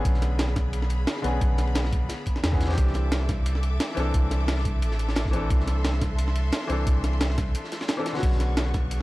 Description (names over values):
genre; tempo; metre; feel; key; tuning
liquid drum and bass; 176 BPM; 4/4; swing 54% on 16ths; unclear; A4 = 440 Hz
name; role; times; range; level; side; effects
clear concert grand piano; accompaniment; 0.0-9.0 s; D3 to A4; -32 LUFS; left 2 dB; tape echo
bright studio string section; sustained chords; 0.0-9.0 s; G#4 to D6; -37 LUFS; left 1 dB; sidechain pumping
warm sub bass; bass; 0.0-9.0 s; A1 to E2; -25 LUFS; equal; none
breakbeat sampler-style drum kit; drums; 0.1-9.0 s; crash cymbal, hi-hat, snare drum; -30 LUFS; right 1 dB; none
crunchy breakbeat drum kit; drums; 0.1-9.0 s; ride cymbal, snare drum; -39 LUFS; equal; high-pass filter on cymbals, high-pass filter on snare, high-pass filter on room
electronic kick drum; drums; 0.1-8.8 s; none; -25 LUFS; equal; none
room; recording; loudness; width
small room ambience; dark, warm production; -22 LUFS; side -19 dB against mid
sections
0.0-9.0 A section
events
break 7.5-8.2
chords
0.0 Bm69; 2.8 C69; 8.2 Bm69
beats
| 0.05 0.39 0.73 1.07 | 1.41 1.75 2.10 2.44 | 2.78 3.12 3.46 3.80 | 4.14 4.48 4.82 5.16 | 5.50 5.84 6.19 6.53 | 6.87 7.21 7.55 7.89 | 8.23 8.57 8.91